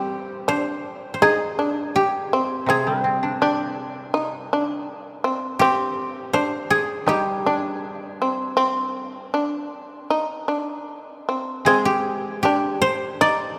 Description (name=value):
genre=japanese traditional, Japanese chamber music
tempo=80 BPM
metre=4/4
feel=rubato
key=G miyako bushi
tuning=A4 = 440 Hz
part: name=koto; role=melody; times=0.0-13.6 s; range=G4 to D5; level=-24 LUFS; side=equal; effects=none
part: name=shamisen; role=second line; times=0.0-13.6 s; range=C4 to Eb4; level=-26 LUFS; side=equal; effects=none
part: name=koto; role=accompaniment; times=0.0-13.6 s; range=C3 to G4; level=-31 LUFS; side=equal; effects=none
room=wet cathedral reverb, RT60 5.2 s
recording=none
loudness=-23 LUFS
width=mono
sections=0.0-11.7 A section; 11.7-13.6 B section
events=none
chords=none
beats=0.47 1.22 1.95 | 2.69 3.42 4.14 4.87 | 5.60 6.33 7.08 7.83 | 8.57 9.32 10.09 10.89 | 11.67 12.44 13.21